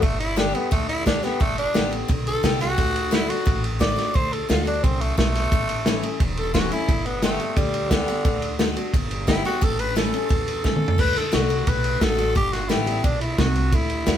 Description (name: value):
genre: rockabilly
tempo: 175 BPM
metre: 4/4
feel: straight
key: D mixolydian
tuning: A4 = 440 Hz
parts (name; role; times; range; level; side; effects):
- growling tenor saxophone; melody; 0.0-14.2 s; D3 to D5; -25 LUFS; equal; none
- picked steel-string acoustic guitar; accompaniment; 0.0-14.2 s; E2 to G4; -28 LUFS; left 5 dB; none
- upright bass; bass; 0.0-14.2 s; E1 to E2; -28 LUFS; equal; none
- vintage drum kit; drums; 0.0-14.1 s; crash cymbal, kick drum, ride cymbal, snare drum, toms; -22 LUFS; equal; none
room: light reverb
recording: band playing live in one room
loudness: -19 LUFS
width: side -10 dB against mid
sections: 0.0-11.0 A section; 11.0-14.2 B section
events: tenor saxophone solo 0.0-11.0; drum fill 10.6-11.0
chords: 0.0 G; 2.8 D; 5.5 A; 6.9 G; 8.3 D; 8.9 G; 9.6 A; 11.0 D; 12.4 G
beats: | 0.04 0.38 0.72 1.07 | 1.41 1.75 2.10 2.44 | 2.78 3.12 3.47 3.81 | 4.15 4.49 4.84 5.18 | 5.52 5.86 6.20 6.54 | 6.89 7.23 7.57 7.91 | 8.25 8.59 8.94 9.28 | 9.62 9.96 10.30 10.64 | 10.99 11.33 11.67 12.02 | 12.36 12.70 13.04 13.39 | 13.73 14.07